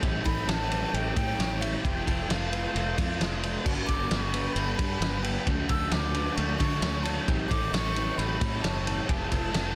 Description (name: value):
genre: rock, shoegaze and dream pop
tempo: 132 BPM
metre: 4/4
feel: straight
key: unclear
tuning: A4 = 441 Hz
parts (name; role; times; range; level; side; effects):
- sweeping resonant pad; sustained chords; 0.1-9.8 s; D4 to B5; -45 LUFS; equal; none
- electric guitar through a small old amp; arpeggios; 0.0-9.8 s; F#4 to C#5; -44 LUFS; equal; subtle chorus, digital delay
- biting overdriven guitar; riff; 0.0-9.8 s; G2 to F4; -38 LUFS; equal; ensemble chorus
- overdriven semi-hollow guitar; riff; 0.0-9.8 s; G2 to F4; -38 LUFS; equal; reverse reverb
- fingered electric bass; bass; 0.0-9.8 s; F1 to D3; -35 LUFS; equal; none
- loose indie drum kit; drums; 0.0-9.7 s; crash cymbal, kick drum, ride cymbal, snare drum; -32 LUFS; equal; none
- breathy mellow silver concert flute; melody; 0.3-9.8 s; E5 to E6; -37 LUFS; equal; digital delay
room: little or no reverb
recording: dense, heavily limited modern master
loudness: -28 LUFS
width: mono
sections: 0.0-9.8 A section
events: none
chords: 0.0 A7; 1.8 F6; 3.7 Gmaj7; 5.5 Dmaj7; 7.3 A7; 9.1 F6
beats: | 0.02 0.47 0.93 1.38 | 1.84 2.29 2.74 3.20 | 3.65 4.10 4.56 5.01 | 5.46 5.92 6.37 6.82 | 7.28 7.73 8.18 8.64 | 9.09 9.54